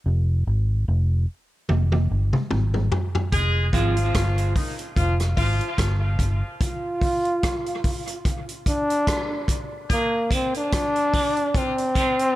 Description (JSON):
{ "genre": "dub reggae", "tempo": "73 BPM", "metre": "4/4", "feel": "swing 57% on 16ths", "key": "F dorian", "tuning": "A4 = 437 Hz", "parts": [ { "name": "vintage muted fingered electric bass", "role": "bass", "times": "0.1-6.4 s", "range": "F1 to Ab1", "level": "-21 LUFS", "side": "equal", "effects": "none" }, { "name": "vintage drum kit", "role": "drums", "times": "1.7-12.4 s", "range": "hi-hat, kick drum, rim click, toms", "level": "-25 LUFS", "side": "equal", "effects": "none" }, { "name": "clear horn section", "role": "second line", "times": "3.3-12.3 s", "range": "Eb3 to Ab4", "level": "-29 LUFS", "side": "left 1 dB", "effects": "high-pass filter, dub echo" }, { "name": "semi-hollow electric guitar", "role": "accompaniment", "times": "3.7-3.9, 10.3-12.2 s", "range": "F3 to F4", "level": "-30 LUFS", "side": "right 3 dB", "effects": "high-pass filter, dub echo" }, { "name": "warm trombone", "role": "melody", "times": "6.6-12.4 s", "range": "Bb3 to F4", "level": "-23 LUFS", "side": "equal", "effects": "dub echo" } ], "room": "light reverb, studio ambience", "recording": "none", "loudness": "-20 LUFS", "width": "side -16 dB against mid", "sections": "0.0-12.4 A section", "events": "break 0.0-6.6; drum fill 1.7-3.3; filter sweep 6.6-12.4", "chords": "0.0 Fm; 6.6 N.C.; 9.9 Fm", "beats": "| 0.05 0.87 1.69 2.51 | 3.33 4.15 4.97 5.79 | 6.61 7.43 8.26 9.08 | 9.90 10.72 11.54" }